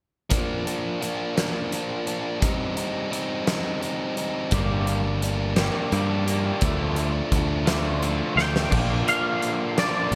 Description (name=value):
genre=indie rock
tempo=57 BPM (dotted quarters)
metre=6/8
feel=straight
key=unclear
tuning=A4 = 440 Hz
part: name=biting overdriven guitar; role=riff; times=0.3-10.1 s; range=F3 to Eb4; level=-29 LUFS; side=equal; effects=none
part: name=big rock drum kit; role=drums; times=0.3-10.2 s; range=crash cymbal, hi-hat, kick drum, snare drum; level=-30 LUFS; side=equal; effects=gated reverb
part: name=raw garage guitar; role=riff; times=4.5-10.2 s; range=Bb2 to G4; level=-33 LUFS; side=equal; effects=overdrive, lush chorus, delay
part: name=picked electric bass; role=bass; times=4.5-10.2 s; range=G1 to G2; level=-28 LUFS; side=equal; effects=none
part: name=twangy electric guitar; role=melody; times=8.4-10.2 s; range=D5 to G5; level=-27 LUFS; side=equal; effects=ensemble chorus
room=moderate plate reverb, RT60 2.9 s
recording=bright 1980s-style digital production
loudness=-25 LUFS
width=mono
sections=0.3-8.7 A section; 8.7-10.2 B section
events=drum fill 8.4-8.7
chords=0.3 Bb; 2.4 Cm; 4.5 Gm; 6.6 Dm; 8.7 Bb